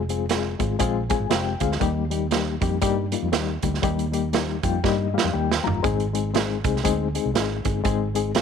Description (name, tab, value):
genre	uptempo 1960s-style soul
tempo	119 BPM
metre	4/4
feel	swing 60% on 8ths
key	Eb major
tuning	A4 = 440 Hz
part	vintage muted fingered electric bass	bass	0.0-8.4 s	F1 to G2	-27 LUFS	right 2 dB	none
part	reed electric piano	accompaniment	0.1-8.4 s	G3 to Bb5	-25 LUFS	left 11 dB	fast tremolo
part	vintage drum kit	drums	0.1-8.4 s	hi-hat, kick drum, snare drum, toms	-25 LUFS	right 6 dB	none
room	small room ambience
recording	1960s-style stereo with parts hard left and right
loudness	-21 LUFS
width	side -7 dB against mid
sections	0.0-8.4 A section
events	reed electric piano fill 0.8-1.8, 4.3-5.8; drum fill 4.8-5.8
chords	0.0 Fm; 1.8 Eb; 5.8 Ab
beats	0.29 0.80 1.30 | 1.81 2.31 2.82 3.32 | 3.83 4.33 4.83 5.34 | 5.84 6.34 6.85 7.35 | 7.85 8.35